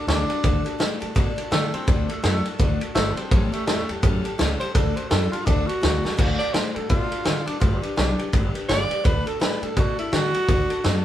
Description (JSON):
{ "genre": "rockabilly", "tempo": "167 BPM", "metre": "4/4", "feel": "swing 61% on 8ths", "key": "D major", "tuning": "A4 = 442 Hz", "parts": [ { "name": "warm tenor saxophone", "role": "melody", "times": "0.0-11.0 s", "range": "A3 to D5", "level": "-27 LUFS", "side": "equal", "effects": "none" }, { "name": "picked steel-string acoustic guitar", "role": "accompaniment", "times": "0.0-11.0 s", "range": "A2 to B4", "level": "-31 LUFS", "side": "left 3 dB", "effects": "none" }, { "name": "upright bass", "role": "bass", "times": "0.1-11.0 s", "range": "G1 to D3", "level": "-26 LUFS", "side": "equal", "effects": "none" }, { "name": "vintage drum kit", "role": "drums", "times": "0.1-10.9 s", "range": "crash cymbal, kick drum, ride cymbal, snare drum", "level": "-22 LUFS", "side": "equal", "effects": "none" } ], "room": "moderate studio reverb, RT60 0.7 s", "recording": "band playing live in one room", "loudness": "-20 LUFS", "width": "side -12 dB against mid", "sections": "0.0-6.2 A section; 6.2-11.0 A section", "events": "tenor saxophone solo 0.0-11.0; drum fill 6.0", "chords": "0.0 D; 3.3 A7; 4.7 D; 7.6 G; 9.1 D" }